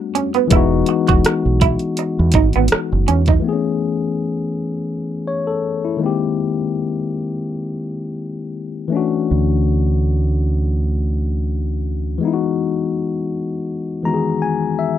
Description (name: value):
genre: R&B, neo-soul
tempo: 82 BPM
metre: 4/4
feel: swing 55% on 16ths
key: A major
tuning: A4 = 440 Hz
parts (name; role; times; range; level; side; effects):
- tine electric piano; accompaniment; 0.0-15.0 s; D#3 to Bb5; -19 LUFS; left 5 dB; auto-pan
- electric guitar through a small old amp; second line; 0.1-3.4 s; B3 to F#4; -19 LUFS; right 11 dB; phaser
- pop drum kit; drums; 0.2-3.4 s; hi-hat, kick drum, rim click; -16 LUFS; right 1 dB; overdrive
- deep dub fingered electric bass; bass; 0.5-3.4, 9.3-12.2 s; E1 to E2; -17 LUFS; right 1 dB; none
room: little or no reverb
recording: dry, close 1970s-style studio recording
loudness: -16 LUFS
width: side -10 dB against mid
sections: 0.0-3.4 A section; 3.4-15.0 B section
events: tine electric piano fill 13.7-15.0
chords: 0.0 Gmaj9; 0.5 Emaj9; 3.4 Amaj9; 6.0 G#maj9; 8.9 Dmaj9; 12.2 Emaj9